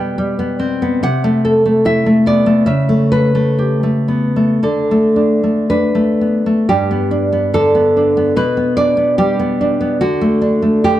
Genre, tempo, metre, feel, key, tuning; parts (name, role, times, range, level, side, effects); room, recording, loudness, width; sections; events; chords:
romantic piece for solo classical guitar; 55-74 BPM; 2/4; rubato; G major; A4 = 440 Hz
nylon-string guitar; solo; 0.0-11.0 s; G2 to G5; -12 LUFS; equal
moderate recital hall reverb, RT60 1.5 s; dark, warm production; -12 LUFS; side -13 dB against mid
0.0-6.7 A section; 6.7-11.0 B section
0.0 G/B; 1.0 Am/C; 2.7 A7/C#; 4.6 D5; 6.7 G; 8.4 G/B; 10.0 D